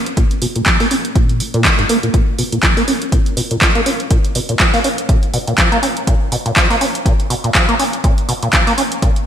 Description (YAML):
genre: acid house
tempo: 122 BPM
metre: 4/4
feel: swing 56% on 16ths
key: Bb phrygian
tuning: A4 = 440 Hz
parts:
  - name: punchy analog drum machine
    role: drums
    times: 0.1-9.2 s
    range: handclaps, hi-hat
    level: -17 LUFS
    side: equal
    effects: gated reverb
  - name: deep acid bass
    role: riff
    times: 0.2-9.1 s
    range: Ab2 to Db4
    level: -18 LUFS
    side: equal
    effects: tube saturation, lush chorus, sidechain pumping, digital delay
  - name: electronic kick drum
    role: drums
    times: 0.2-9.1 s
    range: none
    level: -15 LUFS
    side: equal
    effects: none
room: moderate lush hall reverb, RT60 1.7 s, digital ambience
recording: bright 1980s-style digital production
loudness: -12 LUFS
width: side -9 dB against mid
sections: 0.0-9.3 A section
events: filter sweep on acid bass 0.0-9.3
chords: none